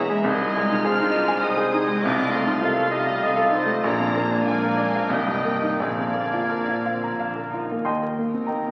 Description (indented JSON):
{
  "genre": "classical",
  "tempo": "85-105 BPM",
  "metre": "3/4",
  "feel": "rubato",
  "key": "unclear",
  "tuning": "A4 = 436 Hz",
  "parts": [
    { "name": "rich studio violin section", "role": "melody", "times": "0.0-8.7 s", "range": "D5 to F6", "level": "-35 LUFS", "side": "equal", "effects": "none" },
    { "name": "warm baby grand piano", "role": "melody", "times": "0.0-8.7 s", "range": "Bb1 to C6", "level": "-26 LUFS", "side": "equal", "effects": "none" },
    { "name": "bright small flute group", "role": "second line", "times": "0.0-7.5 s", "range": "F6 to A6", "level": "-32 LUFS", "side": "equal", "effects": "none" },
    { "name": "mellow cor anglais", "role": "second line", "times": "0.0-7.5 s", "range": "C5 to F5", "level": "-32 LUFS", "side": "equal", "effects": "none" },
    { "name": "rich studio violin section", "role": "second line", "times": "0.0-8.7 s", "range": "Bb4 to F5", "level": "-34 LUFS", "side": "equal", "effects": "none" },
    { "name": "warm clarinet", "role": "second line", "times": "0.0-7.5 s", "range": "Bb3 to G4", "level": "-38 LUFS", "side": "equal", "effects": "none" },
    { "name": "warm bassoon", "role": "accompaniment", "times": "0.0-7.5 s", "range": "Eb3 to Ab3", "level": "-37 LUFS", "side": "equal", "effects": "none" },
    { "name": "warm French horn section", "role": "sustained chords", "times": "0.0-7.5 s", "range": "G#3 to F4", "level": "-34 LUFS", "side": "equal", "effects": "none" },
    { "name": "mellow tuba", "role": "bass", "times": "0.0-7.8 s", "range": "E1 to C2", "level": "-37 LUFS", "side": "equal", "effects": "none" },
    { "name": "warm chamber cello section", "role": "bass", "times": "0.0-8.7 s", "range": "Eb2 to F4", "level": "-38 LUFS", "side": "equal", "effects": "none" },
    { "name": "warm studio double bass section", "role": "bass", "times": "0.0-8.7 s", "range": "Bb1 to E2", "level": "-44 LUFS", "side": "equal", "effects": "none" },
    { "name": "dark studio viola section", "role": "accompaniment", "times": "0.3-8.7 s", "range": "Bb3 to Bb4", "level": "-40 LUFS", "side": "equal", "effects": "none" }
  ],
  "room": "wet concert hall reverb, RT60 1.9 s",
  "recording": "very old 78 rpm record, vinyl crackle",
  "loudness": "-23 LUFS",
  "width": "mono",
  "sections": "0.0-7.8 A section",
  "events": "none",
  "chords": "0.2 Ab/C; 2.0 F7/C; 3.8 Bb; 5.1 Cm7; 5.8 Bb; 7.8 Eb",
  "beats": "| 0.25 0.86 1.44 | 2.03 2.63 3.24 | 3.85 4.47 5.12 | 5.80 6.50 7.18 | 7.83 8.46"
}